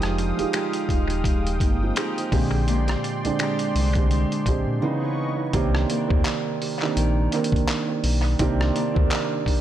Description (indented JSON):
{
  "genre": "contemporary R&B",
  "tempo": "84 BPM",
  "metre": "4/4",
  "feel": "swing 58% on 16ths",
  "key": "C minor",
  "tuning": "A4 = 441 Hz",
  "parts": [
    { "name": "felt-muted upright piano", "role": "accompaniment", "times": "0.0-9.6 s", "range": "Db3 to C5", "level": "-25 LUFS", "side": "right 5 dB", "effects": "analog delay" },
    { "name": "warm analog pad", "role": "sustained chords", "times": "0.0-5.5 s", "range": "Ab3 to Eb6", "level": "-33 LUFS", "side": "left 1 dB", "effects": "chorus" },
    { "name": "fingerpicked steel-string acoustic guitar", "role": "arpeggios", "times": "0.0-9.6 s", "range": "Bb2 to G4", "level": "-31 LUFS", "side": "left 6 dB", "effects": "analog delay" },
    { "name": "sub bass with octave", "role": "bass", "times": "0.0-9.1 s", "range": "Eb1 to Bb2", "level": "-24 LUFS", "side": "left 1 dB", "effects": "none" },
    { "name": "dusty soul sampler-style drum kit", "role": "drums", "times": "0.0-9.6 s", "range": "finger snaps, handclaps, hi-hat, kick drum, rim click", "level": "-26 LUFS", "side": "left 1 dB", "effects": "analog delay" }
  ],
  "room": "little or no reverb",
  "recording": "echo-heavy mix",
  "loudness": "-20 LUFS",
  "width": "side -11 dB against mid",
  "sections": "0.0-5.5 A section; 5.5-9.6 B section",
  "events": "break 4.8-5.5",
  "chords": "0.0 Fm9; 2.3 Bb13; 4.8 Dbm9; 5.5 Cm9"
}